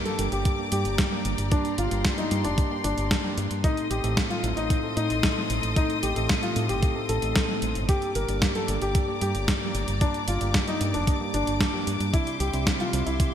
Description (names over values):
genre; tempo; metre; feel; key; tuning
italo disco; 113 BPM; 4/4; straight; G minor; A4 = 440 Hz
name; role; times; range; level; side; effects
rich studio string section; sustained chords; 0.0-13.3 s; G4 to Eb6; -33 LUFS; left 4 dB; none
tine electric piano; stabs; 0.0-13.3 s; G2 to A4; -32 LUFS; right 3 dB; fast stereo tremolo
dark grand piano; melody; 0.1-13.3 s; D4 to Bb4; -30 LUFS; left 1 dB; ping-pong delay
clean 12-bit digital drum machine; drums; 0.1-13.3 s; hi-hat, snare drum; -29 LUFS; equal; gated reverb
fingered electric bass with an envelope filter; bass; 0.2-13.2 s; F1 to A2; -29 LUFS; equal; none
electronic kick drum; drums; 0.5-13.3 s; none; -25 LUFS; equal; none
room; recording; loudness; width
light reverb; bright 1980s-style digital production; -23 LUFS; side -9 dB against mid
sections
0.0-13.3 A section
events
none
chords
0.0 Gm; 3.6 Adim; 7.9 Gm; 12.1 Cadd9